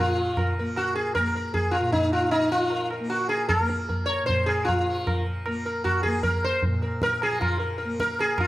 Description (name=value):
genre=indian classical, Hindustani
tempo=154 BPM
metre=3/4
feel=straight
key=unclear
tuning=A4 = 440 Hz
part: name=sitar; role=melody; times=0.0-8.5 s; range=Eb4 to Db5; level=-24 LUFS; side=equal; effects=none
part: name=tanpura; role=drone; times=0.0-8.5 s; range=Bb2 to Bb3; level=-33 LUFS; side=equal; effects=none
part: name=tabla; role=percussion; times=0.4-8.5 s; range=none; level=-28 LUFS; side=equal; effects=none
room=moderate recital hall reverb, RT60 1.7 s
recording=none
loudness=-22 LUFS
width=side -16 dB against mid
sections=0.0-8.5 A section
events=none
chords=none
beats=0.37 0.76 | 1.16 1.55 1.94 | 2.33 2.73 3.12 | 3.51 3.90 4.29 | 4.68 5.07 5.46 | 5.85 6.24 6.63 | 7.02 7.41 7.80 | 8.19